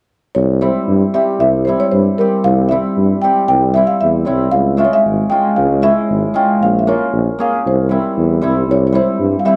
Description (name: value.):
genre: klezmer.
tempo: 115 BPM.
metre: 2/4.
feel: straight.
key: C phrygian dominant.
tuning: A4 = 440 Hz.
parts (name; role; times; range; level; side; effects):
marimba with soft mallets; melody; 0.3-9.6 s; Bb4 to G5; -18 LUFS; equal; none.
warm tuba; bass; 0.4-9.4 s; Ab1 to G2; -18 LUFS; equal; none.
cimbalom; accompaniment; 0.6-9.6 s; G3 to Ab4; -19 LUFS; equal; none.
room: little or no reverb.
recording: dry, close 1970s-style studio recording.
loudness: -14 LUFS.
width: mono.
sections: 0.4-8.7 A section.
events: none.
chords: 0.4 C; 4.5 Db; 6.6 Bbm; 7.7 C.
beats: | 0.35 0.88 | 1.40 1.93 | 2.45 2.97 | 3.50 4.02 | 4.54 5.06 | 5.58 6.10 | 6.62 7.13 | 7.65 8.17 | 8.68 9.20.